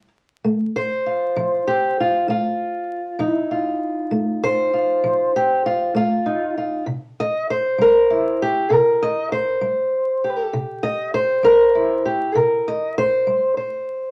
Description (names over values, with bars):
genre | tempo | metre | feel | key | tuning
acoustic country blues, solo or duo | 66 BPM (dotted quarters) | 12/8 | straight | unclear | A4 = 440 Hz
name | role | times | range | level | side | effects
fingerpicked old ladder-braced acoustic guitar | solo | 0.0-14.1 s | C3 to Eb5 | -20 LUFS | equal | none
room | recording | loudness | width
wet club reverb, RT60 0.5 s | vinyl crackle | -20 LUFS | mono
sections
0.0-14.1 A section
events
none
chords
0.0 F7; 6.9 C7